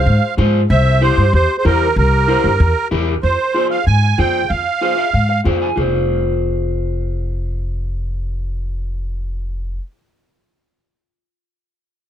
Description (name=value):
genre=latin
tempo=189 BPM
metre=4/4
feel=straight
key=F harmonic minor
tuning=A4 = 441 Hz
part: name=musette accordion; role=melody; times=0.0-5.4 s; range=Bb4 to Ab5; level=-17 LUFS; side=right 5 dB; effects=none
part: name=breathy clarinet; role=second line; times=0.0-2.9 s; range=G4 to C5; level=-24 LUFS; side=left 5 dB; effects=none
part: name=upright bass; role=bass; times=0.0-9.8 s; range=F1 to Ab2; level=-16 LUFS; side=equal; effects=none
part: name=electric guitar at the edge of break-up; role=accompaniment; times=0.4-9.8 s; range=E4 to Ab5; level=-21 LUFS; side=left 2 dB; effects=none
room=little or no reverb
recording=close, detailed microphones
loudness=-14 LUFS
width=side -10 dB against mid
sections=0.0-3.2 A section; 3.2-5.8 B section; 5.8-8.3 C section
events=clean electric guitar fill 4.8-5.8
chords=0.0 Fm; 0.7 C7; 3.2 Fm